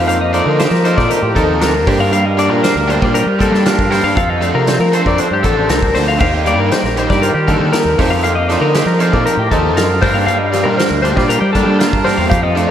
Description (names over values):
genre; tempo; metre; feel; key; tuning
math rock and midwest emo; 118 BPM; 4/4; straight; G minor; A4 = 438 Hz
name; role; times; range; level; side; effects
twangy electric guitar; accompaniment; 0.0-12.7 s; G2 to C5; -20 LUFS; right 6 dB; none
twelve-string electric guitar; arpeggios; 0.0-12.7 s; G4 to F5; -16 LUFS; left 3 dB; spring reverb, analog delay
overdriven electric guitar; riff; 0.0-12.7 s; F3 to A4; -19 LUFS; equal; ensemble chorus
fuzz fingered electric bass; bass; 0.0-12.7 s; A1 to G3; -18 LUFS; equal; overdrive
loose indie drum kit; drums; 0.1-12.7 s; crash cymbal, hi-hat, kick drum, snare drum; -19 LUFS; equal; none
room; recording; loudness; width
wet lush hall reverb, RT60 2.6 s; dreamy mix soaked in reverb; -11 LUFS; side -10 dB against mid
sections
0.0-12.7 A section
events
none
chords
0.0 F9sus4; 4.2 Dm7/F; 6.2 Ebmaj9; 8.0 F9sus4; 10.0 Gm7